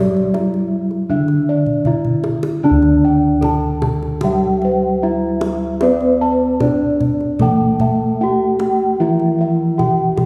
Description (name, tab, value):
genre	Javanese gamelan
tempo	75 BPM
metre	4/4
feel	straight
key	D slendro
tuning	A4 = 438 Hz
part	gamelan-type bronze metallophone	melody	0.0-10.3 s	C4-45c to A4+25c	-22 LUFS	equal	tape echo
part	gamelan-type bronze metallophone	accompaniment	0.0-10.3 s	D3 to C4-45c	-22 LUFS	equal	none
part	gamelan-type bossed gongs	arpeggios	0.0-10.2 s	C5-45c to A5+25c	-26 LUFS	equal	none
part	gamelan-type bossed gongs	bass	0.0-9.9 s	D2 to C5-45c	-23 LUFS	equal	none
part	kendang	percussion	0.2-10.3 s	none	-25 LUFS	equal	none
part	gamelan-type bronze metallophone	arpeggios	2.6-10.3 s	C5-45c to A5+25c	-27 LUFS	equal	none
room	wet scoring stage reverb, RT60 2.0 s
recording	heard from further back in the room, studio reverb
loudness	-16 LUFS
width	mono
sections	0.0-2.6 A section; 2.6-10.3 B section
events	drum fill 1.7-2.6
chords	none